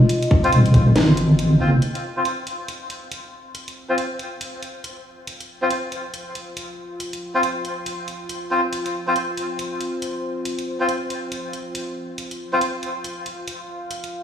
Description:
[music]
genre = deep dubstep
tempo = 139 BPM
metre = 4/4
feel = swing 61% on 16ths, half-time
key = unclear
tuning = A4 = 439 Hz
[part]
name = dark analog pad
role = sustained chords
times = 0.0-14.2 s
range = F4 to F5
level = -30 LUFS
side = left 1 dB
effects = chorus, phaser
[part]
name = deep soft wobble bass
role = bass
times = 0.0-1.8 s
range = Eb1 to Ab1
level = -14 LUFS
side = equal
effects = chorus, tube saturation
[part]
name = garage drum kit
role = drums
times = 0.1-14.1 s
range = hi-hat, snare drum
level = -30 LUFS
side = equal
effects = none
[part]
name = electronic kick drum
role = drums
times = 0.3-0.8 s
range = none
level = -16 LUFS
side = equal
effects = none
[part]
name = melodica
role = stabs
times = 0.4-12.6 s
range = C4 to C5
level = -25 LUFS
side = left 1 dB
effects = low-pass filter, dub echo
[sound]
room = moderate huge ambient reverb, RT60 5.3 s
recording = played on a big sound system in a bare room, stone room reverb, vinyl crackle, small room ambience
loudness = -20 LUFS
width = side -9 dB against mid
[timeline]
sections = 0.0-1.8 A section; 1.8-14.2 B section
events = filter sweep on analog synth pad 1.8-14.2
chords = 0.0 F5

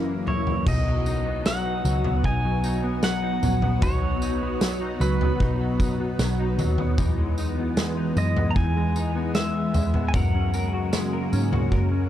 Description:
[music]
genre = dream pop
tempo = 76 BPM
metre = 4/4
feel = straight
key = B major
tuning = A4 = 439 Hz
[part]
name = pedal steel guitar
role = melody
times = 0.0-11.7 s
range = A#4 to A#5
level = -31 LUFS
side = right 1 dB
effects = digital delay, shimmer reverb
[part]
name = soft string machine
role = sustained chords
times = 0.0-12.1 s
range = C#3 to F#4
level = -30 LUFS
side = right 2 dB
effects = phaser, ensemble chorus, shimmer reverb
[part]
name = semi-hollow electric guitar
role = arpeggios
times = 0.0-12.1 s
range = F#2 to A#4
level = -28 LUFS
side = left 3 dB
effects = ensemble chorus, digital delay, shimmer reverb
[part]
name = vintage muted picked electric bass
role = bass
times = 0.0-12.1 s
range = F#1 to G#2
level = -26 LUFS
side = equal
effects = none
[part]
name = loose indie drum kit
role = drums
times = 0.3-11.9 s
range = crash cymbal, kick drum, snare drum, tambourine, toms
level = -27 LUFS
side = equal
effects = none
[sound]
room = light reverb, studio reverb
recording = dark, warm production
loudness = -21 LUFS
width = side -11 dB against mid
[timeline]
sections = 0.7-12.1 A section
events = none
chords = 0.0 F#7; 0.7 B; 7.0 Emaj7; 10.1 F#add9

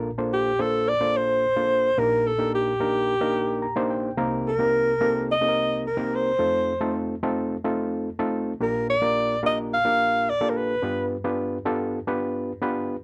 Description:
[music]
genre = soul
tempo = 108 BPM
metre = 4/4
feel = straight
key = Bb major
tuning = A4 = 440 Hz
[part]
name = overdriven reed electric piano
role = accompaniment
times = 0.0-13.0 s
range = Bb1 to Bb5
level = -28 LUFS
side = equal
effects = none
[part]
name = breathy alto saxophone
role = melody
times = 0.3-11.1 s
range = G4 to F5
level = -24 LUFS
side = equal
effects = none
[sound]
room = moderate club reverb, RT60 0.5 s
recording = none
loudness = -24 LUFS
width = mono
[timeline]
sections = 0.0-13.0 A section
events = reed electric piano fill 3.4-4.2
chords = 0.0 Bbmaj7; 2.0 Ebmaj7/Bb; 4.2 Cm7; 6.4 F7; 8.6 Bb6; 10.8 G7

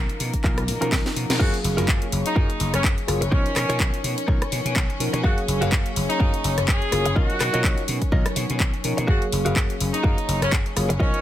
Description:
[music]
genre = filtered disco house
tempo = 125 BPM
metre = 4/4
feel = swing 56% on 16ths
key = F# major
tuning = A4 = 440 Hz
[part]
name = tine electric piano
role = accompaniment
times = 0.0-11.2 s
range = E#3 to E#5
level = -29 LUFS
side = equal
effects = phaser, vintage 12-bit sampler grit, sidechain pumping, low-pass filter
[part]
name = rich studio string section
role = sustained chords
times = 0.0-11.2 s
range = A#3 to C#5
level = -32 LUFS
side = left 4 dB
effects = sidechain pumping, low-pass filter
[part]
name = vintage slap bass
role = bass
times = 0.0-11.2 s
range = F#1 to B2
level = -26 LUFS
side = equal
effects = sidechain pumping, low-pass filter
[part]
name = house drum kit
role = drums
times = 0.1-11.2 s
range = crash cymbal, handclaps, hi-hat, rim click, snare drum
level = -27 LUFS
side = left 1 dB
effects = sidechain pumping on hats, sidechain pumping on cymbals
[part]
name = electronic kick drum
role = drums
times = 0.3-11.1 s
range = none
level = -22 LUFS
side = equal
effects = none
[part]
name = direct-recorded clean electric guitar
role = riff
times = 0.4-11.2 s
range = C#4 to E#5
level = -30 LUFS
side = equal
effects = sidechain pumping, low-pass filter
[part]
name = bright horn section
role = melody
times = 1.4-11.2 s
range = C#4 to G#4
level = -28 LUFS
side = right 1 dB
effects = sidechain pumping, low-pass filter, ping-pong delay
[sound]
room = digital ambience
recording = none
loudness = -20 LUFS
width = side -12 dB against mid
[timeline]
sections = 0.0-1.4 A section; 1.4-11.2 B section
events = drum fill 0.9-1.4; band accent 1.3; drop 1.4-11.2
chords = 0.0 Bmaj9#11; 1.4 F#maj9; 3.3 Bmaj9#11; 5.2 F#maj9; 7.2 Bmaj9#11; 9.1 F#maj9

